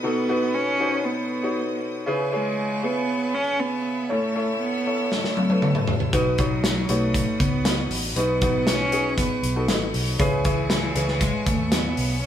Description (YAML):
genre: piano-driven pop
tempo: 118 BPM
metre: 4/4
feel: straight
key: C# minor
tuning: A4 = 445 Hz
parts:
  - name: warm cello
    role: melody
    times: 0.0-12.3 s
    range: E3 to C#4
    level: -26 LUFS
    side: right 2 dB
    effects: none
  - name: clear upright piano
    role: accompaniment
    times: 0.0-12.2 s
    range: A2 to C#5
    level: -26 LUFS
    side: left 1 dB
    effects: none
  - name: bright chamber string section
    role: sustained chords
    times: 0.0-12.3 s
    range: B4 to E6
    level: -34 LUFS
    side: left 1 dB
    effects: none
  - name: modern studio drum kit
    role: drums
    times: 5.1-12.1 s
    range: hi-hat, kick drum, snare drum, toms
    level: -24 LUFS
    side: left 1 dB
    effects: none
  - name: vintage muted fingered electric bass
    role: bass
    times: 6.1-12.2 s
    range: G#1 to D#2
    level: -27 LUFS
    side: equal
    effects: none
room: moderate stone room reverb, RT60 1.0 s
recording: band playing live in one room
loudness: -20 LUFS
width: side -10 dB against mid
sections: 0.0-12.3 A section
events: drum fill 5.1-6.1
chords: 0.0 B; 2.1 C#m7; 4.1 A; 6.1 B; 10.2 C#m7